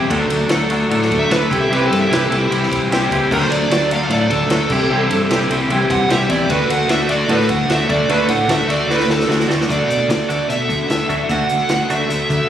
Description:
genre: indie rock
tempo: 150 BPM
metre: 4/4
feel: straight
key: D mixolydian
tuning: A4 = 440 Hz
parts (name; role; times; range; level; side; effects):
- overdriven electric guitar; riff; 0.0-12.5 s; C3 to G4; -20 LUFS; left 5 dB; none
- twelve-string electric guitar; riff; 0.0-12.3 s; E3 to A4; -22 LUFS; right 6 dB; analog chorus, slapback echo
- growling fingered electric bass; bass; 0.0-12.4 s; C2 to D3; -21 LUFS; equal; overdrive
- compact cocktail drum kit; drums; 0.1-12.4 s; crash cymbal, hi-hat, kick drum, ride cymbal, snare drum; -23 LUFS; right 1 dB; none
- dark smooth lead guitar; melody; 1.2-12.5 s; E4 to F#5; -20 LUFS; right 2 dB; overdrive, slapback echo
room: light reverb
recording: recorded on a phone in the room, studio reverb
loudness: -14 LUFS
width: side -10 dB against mid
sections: 0.0-9.7 A section; 9.7-12.5 B section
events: lead electric guitar solo 0.0-9.7; drum fill 8.9-9.7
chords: 0.1 D; 1.5 C; 3.3 D; 4.7 C; 6.5 D; 9.7 Dadd9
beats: | 0.11 0.51 0.91 1.31 | 1.71 2.11 2.51 2.91 | 3.31 3.71 4.10 4.50 | 4.90 5.30 5.70 6.10 | 6.50 6.89 7.29 7.69 | 8.09 8.49 8.89 9.29 | 9.69 10.09 10.49 10.89 | 11.29 11.70 12.10

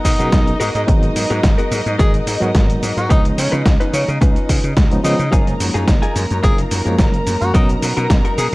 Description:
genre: nu-disco, nu disco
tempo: 108 BPM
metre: 4/4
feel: straight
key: F# major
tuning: A4 = 440 Hz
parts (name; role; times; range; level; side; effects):
- breathy tenor saxophone; melody; 0.0-8.5 s; C#4 to G#4; -24 LUFS; equal; tape echo
- barky reed electric piano; accompaniment; 0.0-8.5 s; E#3 to A#4; -23 LUFS; equal; overdrive, fast tremolo
- dark studio violin section; sustained chords; 0.0-8.5 s; D#4 to A#5; -25 LUFS; equal; sidechain pumping
- direct-recorded clean electric guitar; riff; 0.0-8.5 s; A#3 to B4; -25 LUFS; left 2 dB; lush chorus
- slap bass; bass; 0.0-8.5 s; F#1 to C#3; -20 LUFS; equal; none
- dusty soul sampler-style drum kit; drums; 0.0-8.5 s; cabasa, hi-hat, snare drum; -23 LUFS; equal; overdrive, studio reverb
- electronic kick drum; drums; 0.0-8.2 s; none; -15 LUFS; equal; studio reverb
room: digital ambience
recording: dry, gritty hardware recording, cassette tape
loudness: -13 LUFS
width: side -21 dB against mid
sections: 0.0-8.5 A section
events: none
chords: 0.0 Bmaj7; 0.6 G#m9; 3.1 C#9; 5.3 F#maj13; 7.5 Bmaj7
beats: 0.32 | 0.88 1.44 1.99 2.55 | 3.10 3.66 4.21 4.77 | 5.32 5.88 6.44 6.99 | 7.55 8.10

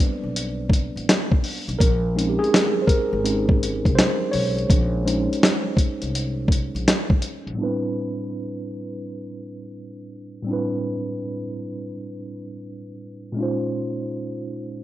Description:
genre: lo-fi hip hop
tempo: 83 BPM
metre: 4/4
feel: swing 66% on 16ths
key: unclear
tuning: A4 = 440 Hz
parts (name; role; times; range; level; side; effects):
- tine electric piano; accompaniment; 0.0-14.8 s; A2 to D5; -26 LUFS; right 1 dB; medium stereo tremolo, cassette tape, low-pass filter
- dusty soul sampler-style drum kit; drums; 0.0-7.6 s; hi-hat, kick drum, snare drum; -19 LUFS; equal; none
- upright bass; bass; 0.2-7.6 s; Ab1 to C2; -26 LUFS; equal; none
room: little or no reverb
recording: rough home demo mix, low-pass filter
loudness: -20 LUFS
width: side -14 dB against mid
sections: 0.0-7.6 A section; 7.6-14.8 B section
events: tine electric piano solo 0.0-7.6; filter sweep 7.6-14.8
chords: 0.0 Am11; 1.8 Bbm11; 7.6 Am11; 13.4 Bbm11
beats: 0.36 1.08 | 1.80 2.53 3.25 3.97 | 4.70 5.42 6.14 6.86 | 7.59 8.31 9.03 9.76 | 10.48 11.20 11.92 12.65 | 13.37 14.09 14.82

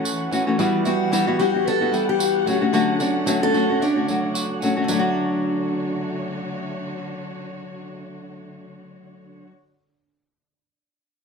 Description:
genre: acoustic pop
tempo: 112 BPM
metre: 4/4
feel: swing 55% on 16ths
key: D major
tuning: A4 = 440 Hz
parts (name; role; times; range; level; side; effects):
- nylon-string guitar; accompaniment; 0.0-9.6 s; D3 to F#4; -23 LUFS; left 2 dB; none
- muted studio string section; sustained chords; 0.0-9.5 s; D3 to F#5; -33 LUFS; equal; none
- direct-recorded clean electric guitar; arpeggios; 0.0-9.6 s; E3 to F#4; -30 LUFS; right 6 dB; wide subtle chorus
- tambourine; percussion; 0.1-5.1 s; none; -31 LUFS; right 4 dB; none
- picked acoustic archtop guitar; melody; 0.9-9.5 s; D4 to A4; -24 LUFS; left 1 dB; plate reverb
room: light reverb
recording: dark, warm production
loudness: -19 LUFS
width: side -5 dB against mid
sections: 0.0-4.9 A section; 4.9-9.2 B section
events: none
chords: 0.0 F#m7; 0.6 Emadd9; 2.5 Dmaj7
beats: 0.05 | 0.59 1.13 1.66 2.20 | 2.74 3.27 3.81 4.35 | 4.88 5.42 5.95 6.49 | 7.03 7.56 8.10 8.63

